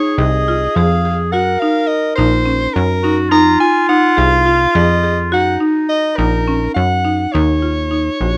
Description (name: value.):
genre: contemporary instrumental, chamber music in an uneven meter.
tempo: 210 BPM (eighths).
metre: 7/8.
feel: straight.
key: Eb dorian.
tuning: A4 = 437 Hz.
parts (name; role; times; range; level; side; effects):
clear soprano saxophone; melody; 0.0-8.4 s; Bb4 to Bb5; -20 LUFS; equal; none.
clear clarinet; second line; 0.0-7.1 s; Eb4 to Bb4; -20 LUFS; equal; none.
buzzing marimba with medium hard mallets; arpeggios; 0.0-8.4 s; Db4 to Ab4; -20 LUFS; equal; none.
plucky analog bass; bass; 0.2-8.4 s; Bb1 to Gb2; -19 LUFS; equal; none.
room: little or no reverb.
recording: close, detailed microphones.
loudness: -15 LUFS.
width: mono.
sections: 0.0-7.3 A section; 7.3-8.4 B section.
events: none.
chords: 0.0 Fm7; 1.3 Ebm; 3.3 Fm7; 5.3 Ebm; 7.3 Ebm7.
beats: 0.18 0.47 0.76 1.04 | 1.33 1.61 1.90 2.18 2.47 2.75 3.04 | 3.32 3.61 3.89 4.17 4.46 4.75 5.03 | 5.32 5.61 5.89 6.18 6.47 6.76 7.05 | 7.35 7.64 7.93 8.21.